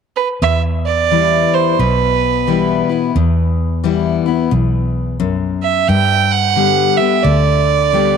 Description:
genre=country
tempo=88 BPM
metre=4/4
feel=swing 63% on 8ths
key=E minor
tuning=A4 = 441 Hz
part: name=clear fiddle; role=melody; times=0.2-8.2 s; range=B4 to G5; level=-14 LUFS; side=right 9 dB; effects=none
part: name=picked steel-string acoustic guitar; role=accompaniment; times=0.4-8.2 s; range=E2 to G4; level=-17 LUFS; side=left 8 dB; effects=none
part: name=vintage muted fingered electric bass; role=bass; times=0.4-8.2 s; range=B1 to G2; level=-17 LUFS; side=right 1 dB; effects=none
room=moderate spring reverb, RT60 1.9 s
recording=1960s-style stereo with parts hard left and right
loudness=-12 LUFS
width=side -6 dB against mid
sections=0.4-8.2 A section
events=none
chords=0.4 Em; 5.9 G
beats=| 0.42 1.10 1.79 2.47 | 3.15 3.84 4.52 5.20 | 5.88 6.57 7.25 7.93

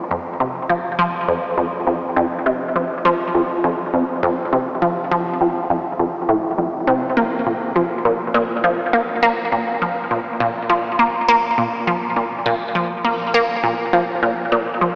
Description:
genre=ambient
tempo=102 BPM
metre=4/4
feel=straight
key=unclear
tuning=A4 = 442 Hz
part: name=resonant blip pluck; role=solo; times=0.1-15.0 s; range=F2 to Bb3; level=-19 LUFS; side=equal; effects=phaser, tape echo
room=wet huge ambient reverb, RT60 8.1 s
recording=worn, warbling old tape, cassette tape, warbly pitch drift, small speaker sound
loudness=-19 LUFS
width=mono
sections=0.0-15.0 A section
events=none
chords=none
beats=| 0.11 0.70 1.29 1.88 | 2.46 3.05 3.64 4.23 | 4.82 5.40 5.99 6.58 | 7.17 7.76 8.35 8.93 | 9.52 10.11 10.70 11.29 | 11.88 12.46 13.05 13.64 | 14.23 14.82

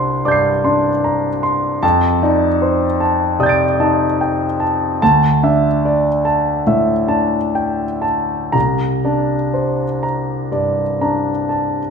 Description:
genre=classical, impressionist solo piano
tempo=58-78 BPM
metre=4/4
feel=rubato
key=unclear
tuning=A4 = 440 Hz
part: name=clear concert grand piano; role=solo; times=0.0-11.9 s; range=C2 to D7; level=-14 LUFS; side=equal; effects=none
room=moderate recital hall reverb, RT60 1.3 s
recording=minimal, uncompressed stereo recording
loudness=-14 LUFS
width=side -6 dB against mid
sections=0.0-11.9 A section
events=none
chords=0.0 Csus2; 1.8 F13; 5.0 Dsus2; 8.5 Csus2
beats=0.25 1.04 | 1.83 2.61 3.39 4.20 | 5.01 5.83 6.65 7.55 | 8.54 9.54 10.52 11.49

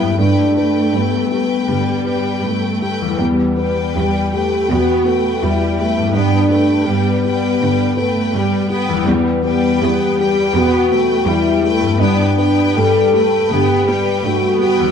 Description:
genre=cinematic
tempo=82 BPM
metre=4/4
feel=rubato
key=unclear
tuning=A4 = 442 Hz
part: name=clear studio violin section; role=second line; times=0.0-14.9 s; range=B4 to G5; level=-23 LUFS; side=left 4 dB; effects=none
part: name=felt-muted upright piano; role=accompaniment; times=0.0-14.9 s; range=E2 to B4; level=-22 LUFS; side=left 1 dB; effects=none
part: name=rich studio viola section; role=accompaniment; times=0.0-14.9 s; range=G3 to B3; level=-22 LUFS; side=right 3 dB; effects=none
part: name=mellow French horn section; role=sustained chords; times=0.0-14.9 s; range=B3 to A4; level=-17 LUFS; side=left 2 dB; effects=none
part: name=concert harp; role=arpeggios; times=0.0-14.9 s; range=E2 to B4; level=-26 LUFS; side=left 6 dB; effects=none
part: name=rich studio cello section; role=bass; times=0.0-14.9 s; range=E2 to G2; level=-22 LUFS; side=right 5 dB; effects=none
room=moderate scoring stage reverb, RT60 1.9 s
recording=dark, warm production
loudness=-13 LUFS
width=side -7 dB against mid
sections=0.0-14.9 A section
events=none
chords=0.2 G; 3.2 Emadd9; 6.2 G; 9.1 Emadd9; 12.0 G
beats=| 0.19 0.94 1.69 2.44 | 3.19 3.97 4.70 5.43 | 6.16 6.88 7.61 8.33 | 9.06 9.82 10.55 11.26 | 11.99 12.77 13.51 14.24

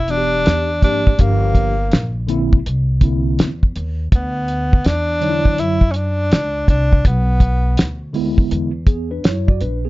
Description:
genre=hip hop, jazz-hop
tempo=82 BPM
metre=4/4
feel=swing 64% on 16ths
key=unclear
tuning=A4 = 440 Hz
part: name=breathy tenor saxophone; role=melody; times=0.0-8.1 s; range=Bb3 to E4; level=-20 LUFS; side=equal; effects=none
part: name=upright bass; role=bass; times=0.0-9.9 s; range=E1 to F#2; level=-20 LUFS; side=equal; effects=none
part: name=mellow tine electric piano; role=accompaniment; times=0.1-9.9 s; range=D3 to D5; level=-21 LUFS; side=equal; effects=medium stereo tremolo
part: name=cloth-damped thuddy drum kit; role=drums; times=0.1-9.8 s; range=hi-hat, kick drum, snare drum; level=-14 LUFS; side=equal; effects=none
room=little or no reverb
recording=dark, warm production, nothing above 7.6 kHz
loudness=-14 LUFS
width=side -19 dB against mid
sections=0.0-9.9 A section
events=none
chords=0.0 Em7; 1.2 Gm7; 2.7 C9; 4.1 Dmaj9; 7.1 Bm; 8.5 E7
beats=0.47 | 1.20 1.93 2.66 3.39 | 4.12 4.86 5.59 6.32 | 7.05 7.78 8.51 9.25

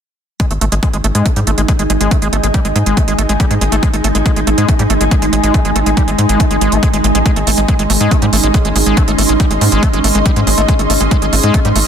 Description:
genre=psychedelic trance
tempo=140 BPM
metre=4/4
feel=straight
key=Ab major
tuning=A4 = 440 Hz
part: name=swarming drone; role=sustained chords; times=1.0-11.9 s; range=Ab3 to Eb4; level=-19 LUFS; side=right 1 dB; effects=built-in reverb, sidechain pumping
part: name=overdriven acid bass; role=riff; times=0.4-11.8 s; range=G3 to A3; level=-18 LUFS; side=equal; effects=auto-pan, sidechain pumping, tape echo
part: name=electronic hi-hat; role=drums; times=0.4-11.8 s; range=none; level=-20 LUFS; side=right 4 dB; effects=none
part: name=electronic kick drum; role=drums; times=0.4-11.6 s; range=none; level=-14 LUFS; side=equal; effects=none
part: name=ethereal airy pad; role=texture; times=1.2-11.9 s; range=Eb4 to C6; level=-19 LUFS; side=right 1 dB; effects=ensemble chorus, built-in reverb, phaser, sidechain pumping
part: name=tight sequencer bass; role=bass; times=0.5-11.8 s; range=Ab1 to Ab2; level=-15 LUFS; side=equal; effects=none
room=digital ambience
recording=dense, heavily limited modern master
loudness=-10 LUFS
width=side -8 dB against mid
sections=0.4-11.9 A section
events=none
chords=0.4 Ab5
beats=| 0.40 0.83 1.26 1.69 | 2.11 2.54 2.97 3.40 | 3.83 4.26 4.68 5.11 | 5.54 5.97 6.40 6.83 | 7.26 7.68 8.11 8.54 | 8.97 9.40 9.83 10.26 | 10.69 11.11 11.54

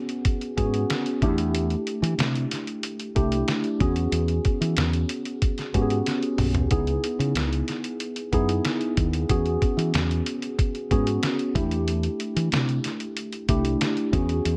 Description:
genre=polished 1980s jazz-funk pop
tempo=93 BPM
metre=4/4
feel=straight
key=unclear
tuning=A4 = 440 Hz
part: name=mellow tine electric piano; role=accompaniment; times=0.0-14.6 s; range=A3 to G#4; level=-29 LUFS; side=equal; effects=analog chorus
part: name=lo-fi sampler-style drum kit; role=drums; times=0.1-14.6 s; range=hi-hat, kick drum, snare drum, toms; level=-29 LUFS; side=equal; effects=none
part: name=fingered electric bass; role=bass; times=0.6-14.6 s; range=B1 to E3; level=-28 LUFS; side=equal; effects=none
room=little or no reverb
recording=none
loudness=-25 LUFS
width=mono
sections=0.0-14.6 A section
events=drum fill 6.1-6.7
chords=0.0 E6 (rootless); 1.2 C6/E; 3.8 E6; 6.7 C#m7; 9.3 E6; 11.6 C6/E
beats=0.25 0.90 | 1.54 2.19 2.84 3.48 | 4.13 4.77 5.42 6.07 | 6.71 7.36 8.00 8.65 | 9.29 9.94 10.58 11.23 | 11.87 12.52 13.16 13.81 | 14.45

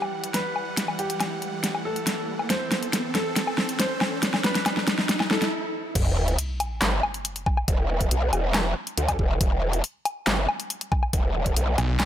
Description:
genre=heavy wobble dubstep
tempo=139 BPM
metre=4/4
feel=half-time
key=E minor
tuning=A4 = 438 Hz
part: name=warm baby grand piano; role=melody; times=0.0-5.5 s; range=G4 to C5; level=-31 LUFS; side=equal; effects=low-pass filter, digital delay
part: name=supersaw chords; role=sustained chords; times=0.0-5.9 s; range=E3 to F#5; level=-34 LUFS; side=right 1 dB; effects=sidechain pumping
part: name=dubstep drum kit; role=drums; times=0.0-12.1 s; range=crash cymbal, handclaps, hi-hat, snare drum, woodblock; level=-26 LUFS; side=left 1 dB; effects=overdrive
part: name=riser and sub drop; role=sound effects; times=0.2-7.7 s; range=none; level=-32 LUFS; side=equal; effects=none
part: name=growl bass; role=bass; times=6.0-11.8 s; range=E1 to D2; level=-24 LUFS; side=equal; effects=chorus, overdrive
part: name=electronic kick drum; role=drums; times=6.0-11.5 s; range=none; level=-24 LUFS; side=equal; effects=overdrive
part: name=snarling distorted saw bass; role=bass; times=11.8-12.1 s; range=B1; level=-22 LUFS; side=equal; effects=distortion, overdrive
room=light reverb, digital ambience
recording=none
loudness=-23 LUFS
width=side -11 dB against mid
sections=0.0-6.0 A section; 6.0-12.1 B section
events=build-up 0.0-6.0; drum fill 0.0-5.5; filter sweep on grand piano 0.0-6.0; riser 0.2-5.5; break 5.5-6.0; drop 6.0-12.1; impact 6.0-7.7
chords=0.0 Emadd9; 2.5 Am; 6.0 E5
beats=0.34 | 0.77 1.21 1.64 2.07 | 2.50 2.93 3.36 3.79 | 4.23 4.66 5.09 5.52 | 5.95 6.38 6.82 7.25 | 7.68 8.11 8.54 8.97 | 9.41 9.84 10.27 10.70 | 11.13 11.56 12.00

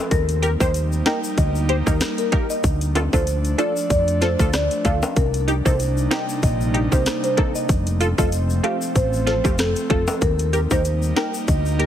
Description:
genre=dancehall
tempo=95 BPM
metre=4/4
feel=swing 56% on 16ths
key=unclear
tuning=A4 = 438 Hz
part: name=airy breathy pad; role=sustained chords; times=0.0-11.9 s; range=C3 to Eb4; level=-28 LUFS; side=equal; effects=chorus, sidechain pumping
part: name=marimba with medium mallets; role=melody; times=0.1-11.6 s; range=A4 to G5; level=-25 LUFS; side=equal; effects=digital delay
part: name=woody fretless electric bass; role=bass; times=0.1-11.9 s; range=F1 to F2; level=-22 LUFS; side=equal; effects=none
part: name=island pop drum kit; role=drums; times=0.1-11.9 s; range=hi-hat, kick drum, rim click, snare drum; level=-22 LUFS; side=equal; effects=overdrive
part: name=tube shaker and timbales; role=percussion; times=0.1-11.8 s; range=none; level=-31 LUFS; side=left 3 dB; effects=none
part: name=punchy chord stab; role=accompaniment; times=0.4-11.9 s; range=A3 to C5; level=-25 LUFS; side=equal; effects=chorus
room=digital ambience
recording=heavily compressed radio sound, multiband compression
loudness=-18 LUFS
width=side -10 dB against mid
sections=0.0-11.9 A section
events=none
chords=0.1 Eb; 2.6 Dm; 5.2 Cm7; 7.7 F; 10.2 Eb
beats=| 0.11 0.74 1.38 2.01 | 2.64 3.27 3.90 4.53 | 5.17 5.80 6.43 7.06 | 7.69 8.32 8.96 9.59 | 10.22 10.85 11.48

